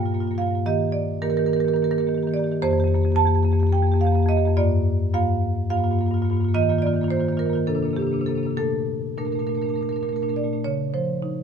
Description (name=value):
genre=classical, contemporary piece for solo marimba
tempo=196-219 BPM (eighths)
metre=7/8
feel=rubato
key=Bb major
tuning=A4 = 443 Hz
part: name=marimba with medium hard mallets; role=solo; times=0.0-11.4 s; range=F2 to A5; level=-20 LUFS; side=equal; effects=none
room=light reverb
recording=none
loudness=-20 LUFS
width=side -7 dB against mid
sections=0.0-10.7 A section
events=none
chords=0.0 Gm7; 0.7 Eb; 2.6 Fsus24; 4.6 Gm7; 6.5 Ebsus2; 7.7 Csus2; 8.6 Bbmaj7; 10.7 Dbmaj9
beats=0.11 0.39 | 0.66 0.94 1.22 1.49 1.77 2.05 2.33 | 2.62 2.89 3.17 3.44 3.72 4.00 4.29 | 4.57 4.86 5.14 5.42 5.70 5.98 6.26 | 6.54 6.82 7.10 7.39 7.68 7.97 8.27 | 8.57 8.87 9.18 9.47 9.77 10.06 10.36 | 10.65 10.94 11.22